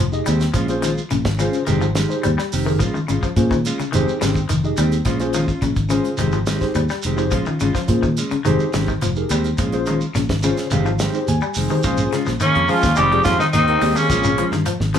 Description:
afrobeat; 106 BPM; 4/4; straight; Bb dorian; A4 = 440 Hz
electric guitar at the edge of break-up; arpeggios; 0.0-15.0 s; Db3 to Ab3; -24 LUFS; left 7 dB
fingered electric bass; bass; 0.0-15.0 s; F1 to Bb2; -21 LUFS; equal
tine electric piano; accompaniment; 0.1-15.0 s; C4 to Ab5; -24 LUFS; left 1 dB; overdrive, fast stereo tremolo
shekere; percussion; 0.1-15.0 s; -28 LUFS; right 4 dB
mellow electric guitar; stabs; 0.3-15.0 s; Eb3 to G4; -24 LUFS; right 3 dB; slapback echo
damped 70s drum kit; drums; 0.3-15.0 s; hi-hat, kick drum, snare drum; -26 LUFS; equal
raspy tenor saxophone; melody; 12.4-14.5 s; Db4 to G4; -17 LUFS; equal; slapback echo
clear trumpet; second line; 12.4-14.5 s; Bb3 to Eb4; -28 LUFS; right 1 dB
muted trombone section; second line; 12.4-14.5 s; Db3 to G3; -28 LUFS; left 2 dB
light reverb, studio reverb; -16 LUFS; side -9 dB against mid
0.0-11.8 A section; 11.8-15.0 B section
tine electric piano fill 10.2-11.8
0.0 Fm9; 0.6 Bbm7; 1.7 Fm9; 2.8 Bbm7; 3.9 Fm9; 5.1 Bbm7; 6.2 Fm9; 7.3 Bbm7; 8.5 Fm9; 9.6 Bbm7; 10.7 Fm9; 11.8 Bbm7; 13.0 Fm9; 14.1 Bbm7
| 0.55 1.11 1.68 2.24 | 2.81 3.37 3.94 4.50 | 5.07 5.63 6.20 6.76 | 7.33 7.89 8.46 9.02 | 9.59 10.15 10.72 11.28 | 11.85 12.41 12.97 13.54 | 14.10 14.66

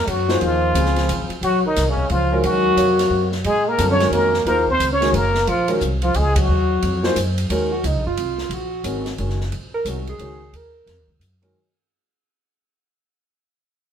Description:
modal jazz; 178 BPM; 3/4; swing 63% on 8ths; Eb dorian; A4 = 440 Hz
trumpet with plunger mute; melody; 0.0-7.2 s; Db4 to Db5; -20 LUFS; left 2 dB
mellow alto saxophone; second line; 0.0-11.1 s; Db3 to Bb4; -24 LUFS; right 2 dB
upright bass; bass; 0.0-11.5 s; Gb1 to Bb2; -23 LUFS; equal
open jazz drum kit; drums; 0.1-11.5 s; hi-hat, kick drum, ride cymbal, snare drum; -29 LUFS; right 1 dB
warm concert grand piano; accompaniment; 0.3-11.6 s; C3 to F5; -23 LUFS; equal
wet stone room reverb, RT60 1.0 s; band playing live in one room; -17 LUFS; side -8 dB against mid
0.0-7.5 A section; 7.5-11.5 B section
band accent 6.3; fade-out 7.5-11.5; alto saxophone solo 7.5-11.5
0.0 Ebm9; 7.5 Ebm7
0.08 | 0.41 0.75 1.09 | 1.42 1.76 2.10 | 2.44 2.77 3.11 | 3.45 3.79 4.12 | 4.46 4.80 5.13 | 5.47 5.81 6.15 | 6.48 6.82 7.16 | 7.50 7.83 8.17 | 8.51 8.84 9.18 | 9.52 9.86 10.19 | 10.53 10.87 11.20

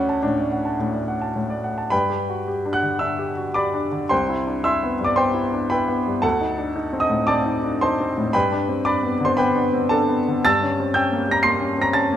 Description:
classical, romantic character piece for solo piano; 112 BPM; 4/4; uneven beats, rubato; G major; A4 = 442 Hz
clear baby grand piano; solo; 0.0-12.2 s; C2 to C7; -19 LUFS; equal
moderate recital hall reverb, RT60 1.5 s; -19 LUFS; side -10 dB against mid
0.0-1.9 A section; 1.9-12.2 B section
0.0 D; 1.9 G; 4.1 Cmaj7; 6.2 D7b9; 8.3 G; 10.4 Gdim7
0.23 0.79 1.34 | 1.91 2.47 3.01 3.55 | 4.11 4.65 5.17 5.71 | 6.23 6.75 7.28 7.82 | 8.35 8.86 9.38 9.91 | 10.45 10.95 11.44 11.95

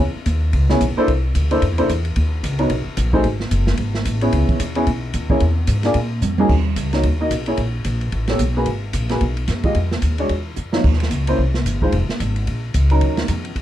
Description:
jazz, small-group swing and bop; 221 BPM; 4/4; swing 59% on 8ths; Eb minor from 6.5 s; A4 = 439 Hz
upright bass; bass; 0.0-13.6 s; F1 to A#2; -19 LUFS; equal
open jazz drum kit; drums; 0.3-13.6 s; crash cymbal, hi-hat, kick drum, ride cymbal, snare drum, toms; -24 LUFS; right 1 dB
warm upright piano; accompaniment; 0.7-13.3 s; F#3 to Eb5; -20 LUFS; equal
little or no reverb; dark, warm production; -17 LUFS; side -12 dB against mid
0.0-6.5 A section; 6.5-13.6 B section
drum fill 6.2, 10.6
0.0 E5; 1.1 C13; 2.2 Bmaj9; 3.2 F#madd9; 4.3 C#m7; 5.4 A#5; 6.5 Ebm7; 7.6 N.C.; 8.1 A9; 8.7 Abm9; 9.8 Fm7; 10.3 Esus2; 10.8 Eb5; 11.4 C5; 11.9 Fm; 12.5 Bbmadd11; 13.0 Ebm7
0.27 0.54 0.81 | 1.08 1.35 1.62 1.89 | 2.16 2.43 2.70 2.97 | 3.24 3.52 3.79 4.06 | 4.33 4.60 4.87 5.14 | 5.41 5.68 5.95 6.22 | 6.49 6.76 7.04 7.31 | 7.58 7.85 8.12 8.39 | 8.67 8.94 9.21 9.48 | 9.75 10.03 10.30 10.57 | 10.84 11.11 11.38 11.66 | 11.93 12.20 12.47 12.74 | 13.01 13.29 13.56

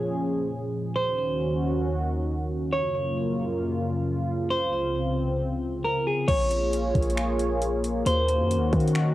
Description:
hip hop, atmospheric cloud-rap; 135 BPM; 4/4; half-time; Bb minor; A4 = 437 Hz
dark analog pad; sustained chords; 0.0-9.1 s; Db2 to Db5; -26 LUFS; equal; chorus, sidechain pumping, cassette tape
semi-hollow electric guitar; melody; 1.0-8.9 s; Ab4 to Db5; -27 LUFS; right 1 dB; lush chorus, cassette tape, tape echo
warm 808-style bass; bass; 6.3-9.1 s; Bb1 to Eb3; -26 LUFS; equal
smooth R&B drum kit; drums; 6.3-9.1 s; crash cymbal, finger snaps, hi-hat, kick drum; -29 LUFS; equal; cassette tape
light reverb; home recording on cassette; -23 LUFS; side -15 dB against mid
0.0-6.3 A section; 6.3-9.1 B section
0.0 Bbm7; 0.9 Ebm7; 2.7 Gbmaj7; 4.5 Dbmaj7; 6.3 Bbm7; 8.1 Ebm7
0.06 0.51 | 0.95 1.40 1.84 2.28 | 2.73 3.17 3.62 4.06 | 4.51 4.95 5.39 5.84 | 6.28 6.73 7.17 7.62 | 8.06 8.51 8.95

